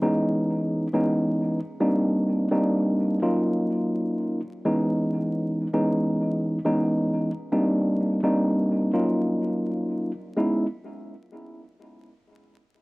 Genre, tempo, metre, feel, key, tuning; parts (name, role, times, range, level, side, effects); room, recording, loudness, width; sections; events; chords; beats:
hip hop; 84 BPM; 4/4; swing 62% on 16ths; C# dorian; A4 = 439 Hz
tine electric piano; solo; 0.0-10.7 s; E3 to E#4; -22 LUFS; equal; overdrive, cassette tape, high-pass filter, low-pass filter, tape echo
light reverb; home recording on cassette, vinyl crackle; -22 LUFS; side -24 dB against mid
0.0-4.7 A section; 4.7-10.4 B section; 10.4-12.8 C section
0.0 C#m9; 1.8 Cm9; 3.2 D#m9; 4.7 C#m9; 7.5 Cm9; 8.9 D#m9; 10.4 C#m9
0.37 1.09 | 1.80 2.52 3.23 3.94 | 4.66 5.37 6.09 6.80 | 7.52 8.23 8.95 9.66 | 10.37